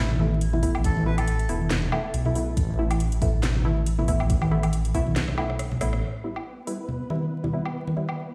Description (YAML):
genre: deep dubstep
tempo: 139 BPM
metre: 4/4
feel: swing 56% on 16ths, half-time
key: unclear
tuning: A4 = 440 Hz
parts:
  - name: melodica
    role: melody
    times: 0.0-1.5 s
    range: E4 to B4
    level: -39 LUFS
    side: equal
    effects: dub echo
  - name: dark detuned saw bass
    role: bass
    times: 0.0-6.0 s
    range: E1 to B1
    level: -27 LUFS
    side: equal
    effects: none
  - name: congas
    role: percussion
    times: 0.1-8.1 s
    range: none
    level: -31 LUFS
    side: equal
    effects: none
  - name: filtered dub chord stab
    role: stabs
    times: 0.2-8.1 s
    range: G3 to E4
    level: -33 LUFS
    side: equal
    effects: analog chorus, dub echo
  - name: garage drum kit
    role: drums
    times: 0.4-8.2 s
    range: handclaps, hi-hat, rim click, snare drum, woodblock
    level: -35 LUFS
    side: equal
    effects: studio reverb
  - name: electronic kick drum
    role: drums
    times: 0.6-5.0 s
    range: none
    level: -27 LUFS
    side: equal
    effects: studio reverb
  - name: flickering grainy texture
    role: texture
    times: 6.4-8.3 s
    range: B3 to B4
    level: -40 LUFS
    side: equal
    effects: built-in reverb
room: light reverb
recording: played on a big sound system in a bare room, stone room reverb, vinyl crackle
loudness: -25 LUFS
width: mono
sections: 0.0-6.0 A section; 6.0-8.3 B section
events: drop 0.0-6.0; drum fill 5.2-6.0; band accent 5.9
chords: 0.0 Asus2; 6.0 Em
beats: 0.41 | 0.84 1.27 1.71 2.14 | 2.57 3.00 3.43 3.87 | 4.30 4.73 5.16 5.59 | 6.02 6.46 6.89 7.32 | 7.75 8.18